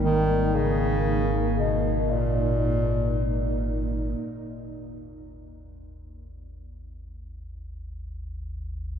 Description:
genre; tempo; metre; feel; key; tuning
dark ambient drone; free time; none; none; unclear; A4 = 440 Hz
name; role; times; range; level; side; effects
mellow bass clarinet; melody; 0.0-3.7 s; A#2 to D#3; -26 LUFS; equal; ping-pong delay
sweeping resonant pad; sustained chords; 0.0-4.2 s; A#3 to A#4; -30 LUFS; equal; chorus
deep rumbling drone; drone; 0.0-9.0 s; G#1 to D#2; -30 LUFS; equal; built-in reverb
room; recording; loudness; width
wet cathedral reverb, RT60 5.3 s; none; -23 LUFS; side -8 dB against mid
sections
0.0-4.2 A section; 4.2-9.0 B section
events
fade-in on synth drone 4.2-9.0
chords
0.0 G#sus2; 4.2 G#5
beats
free time

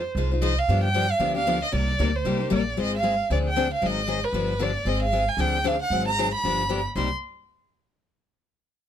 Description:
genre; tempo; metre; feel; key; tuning
acoustic string swing (jazz manouche); 230 BPM; 4/4; swing 56% on 8ths; C minor; A4 = 435 Hz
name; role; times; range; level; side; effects
warm violin; melody; 0.0-7.1 s; B4 to C6; -25 LUFS; right 2 dB; none
upright bass; bass; 0.0-7.1 s; G1 to G2; -27 LUFS; right 1 dB; none
picked steel-string acoustic guitar; accompaniment; 0.2-7.1 s; C3 to C5; -27 LUFS; left 5 dB; none
room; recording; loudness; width
little or no reverb; close, detailed microphones; -22 LUFS; side -10 dB against mid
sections
0.0-2.8 A section; 2.8-7.0 B section; 7.0-8.0 C section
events
none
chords
0.0 Fm7; 0.7 G7; 1.7 Cm7; 2.8 Ab6; 3.3 Dm7b5; 3.8 Ab7; 4.3 G7; 4.9 Ab6; 5.4 Dm7b5; 5.9 Ab7; 6.4 G7; 7.0 Cm7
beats
0.17 0.43 | 0.69 0.95 1.21 1.47 | 1.73 1.99 2.25 2.51 | 2.77 3.04 3.30 3.56 | 3.82 4.08 4.34 4.60 | 4.87 5.13 5.39 5.65 | 5.91 6.17 6.43 6.69 | 6.96

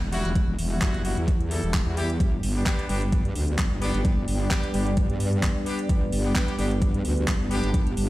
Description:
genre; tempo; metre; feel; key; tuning
bass house; 130 BPM; 4/4; swing 55% on 16ths; unclear; A4 = 441 Hz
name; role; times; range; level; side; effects
metallic wobble bass; bass; 0.0-8.1 s; E1 to G2; -26 LUFS; equal; chorus, tube saturation, sidechain pumping
warbly tape-like pad; texture; 0.0-8.1 s; G3 to A5; -35 LUFS; equal; chorus, built-in reverb, sidechain pumping
bright horn section; stabs; 0.1-7.7 s; G3 to A4; -33 LUFS; left 1 dB; sidechain pumping, digital delay
garage drum kit; drums; 0.1-8.1 s; handclaps, hi-hat; -33 LUFS; equal; small room ambience
electronic kick drum; drums; 0.4-7.8 s; none; -24 LUFS; equal; small room ambience
dark analog pad; sustained chords; 3.0-8.1 s; G3 to B4; -33 LUFS; equal; chorus, sidechain pumping
room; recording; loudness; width
little or no reverb; played on a big sound system in a bare room, stone room reverb; -22 LUFS; side -17 dB against mid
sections
0.0-8.1 A section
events
none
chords
0.0 Emadd9; 2.2 G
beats
| 0.35 0.82 1.28 1.74 | 2.20 2.66 3.12 3.59 | 4.05 4.51 4.97 5.43 | 5.89 6.36 6.82 7.28 | 7.74

